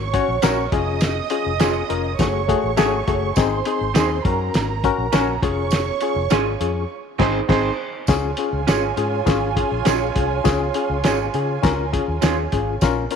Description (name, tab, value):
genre	uptempo 1960s-style soul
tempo	102 BPM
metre	4/4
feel	straight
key	Db major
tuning	A4 = 441 Hz
part	dark studio string section	second line	0.0-12.8 s	F4 to Eb6	-26 LUFS	right 12 dB	none
part	barky reed electric piano	accompaniment	0.0-13.2 s	A3 to Db5	-22 LUFS	left 10 dB	overdrive, fast tremolo
part	vintage muted fingered electric bass	bass	0.0-13.1 s	F1 to Db3	-26 LUFS	equal	none
part	cloth-damped thuddy drum kit	drums	0.1-13.2 s	crash cymbal, hi-hat, kick drum, snare drum	-22 LUFS	equal	none
part	electric guitar through a small old amp	stabs	0.4-12.4 s	A3 to Db5	-27 LUFS	right 12 dB	spring reverb
part	tambourine	percussion	0.4-13.0 s	none	-37 LUFS	right 16 dB	none
room	light reverb, small room ambience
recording	1960s-style stereo with parts hard left and right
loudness	-18 LUFS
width	side -7 dB against mid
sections	0.0-8.1 A section; 8.1-13.2 B section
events	band accent 6.9-8.1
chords	0.0 Gb; 0.7 Db/F; 2.2 Gbmadd9; 3.4 Ab; 4.3 Gb; 5.4 Db/F; 6.9 Ab; 8.1 Db